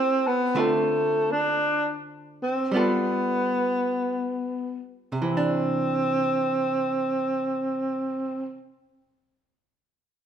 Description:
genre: jazz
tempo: 46-59 BPM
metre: 4/4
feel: swing 69% on 8ths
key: C major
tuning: A4 = 444 Hz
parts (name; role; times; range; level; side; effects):
- breathy tenor saxophone; melody; 0.0-8.6 s; A3 to D4; -24 LUFS; equal; none
- archtop guitar, miked and amplified; accompaniment; 0.0-8.7 s; C3 to A4; -28 LUFS; right 2 dB; none
room: wet large studio reverb, RT60 1.3 s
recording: minimal, uncompressed stereo recording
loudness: -23 LUFS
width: side -9 dB against mid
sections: 0.0-5.2 A section; 5.2-10.3 B section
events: slowing down 0.0-5.2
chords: 0.0 Fmaj9; 0.6 Dm7; 2.7 G9; 5.2 Cadd9

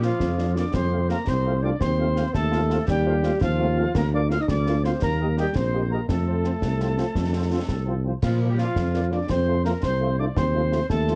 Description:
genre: military-style march for wind band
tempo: 112 BPM (dotted quarters)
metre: 6/8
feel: straight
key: unclear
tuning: A4 = 440 Hz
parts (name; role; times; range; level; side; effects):
- dark trumpet section; melody; 0.0-11.1 s; C5 to F5; -44 LUFS; equal; none
- mellow euphonium; second line; 0.0-11.2 s; F3 to F4; -30 LUFS; equal; none
- piccolo; second line; 0.0-11.2 s; F5 to F6; -36 LUFS; equal; tape echo
- warm woodwind section; second line; 0.0-11.2 s; F4 to F5; -36 LUFS; equal; none
- warm French horn section; accompaniment; 0.0-11.1 s; F3 to G4; -33 LUFS; equal; none
- mellow tuba; bass; 0.0-11.2 s; Bb1 to Bb2; -26 LUFS; equal; none
- concert snare drum, concert bass drum and clash cymbals; drums; 0.0-11.2 s; none; -31 LUFS; equal; vintage 12-bit sampler grit
room: light reverb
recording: worn, warbling old tape, cassette tape, warbly pitch drift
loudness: -23 LUFS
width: mono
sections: 0.0-11.2 A section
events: none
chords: 0.0 Bb; 0.7 F; 1.8 F7/Eb; 3.9 Bb/D; 5.0 Eb; 6.1 F; 8.2 Bb; 9.3 F; 10.4 F7/Eb

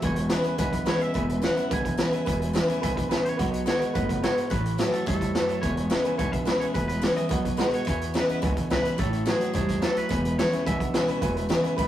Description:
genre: rockabilly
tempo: 214 BPM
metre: 4/4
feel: straight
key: E mixolydian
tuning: A4 = 439 Hz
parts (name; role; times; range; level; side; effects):
- twangy electric guitar; melody; 0.0-11.5 s; G#4 to G#5; -36 LUFS; right 1 dB; slapback echo
- bright upright piano; accompaniment; 0.0-11.9 s; B4 to B5; -33 LUFS; right 3 dB; none
- picked steel-string acoustic guitar; accompaniment; 0.0-11.9 s; E2 to F#4; -33 LUFS; left 1 dB; none
- electric guitar through a small old amp; riff; 0.0-11.9 s; E2 to A3; -30 LUFS; right 1 dB; none
- upright bass; bass; 0.0-11.9 s; E1 to E2; -31 LUFS; equal; none
- raw garage drum kit; drums; 0.0-11.8 s; hi-hat, kick drum, snare drum; -26 LUFS; left 1 dB; none
room: moderate small room ambience, RT60 0.5 s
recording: rough rehearsal-room recording, tube saturation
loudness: -23 LUFS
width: side -12 dB against mid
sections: 0.0-7.9 A section; 7.9-11.9 A section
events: none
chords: 0.0 E6; 3.4 B6; 4.5 A6; 5.6 E6; 7.3 B6; 7.9 E6; 9.0 A6; 10.1 E6

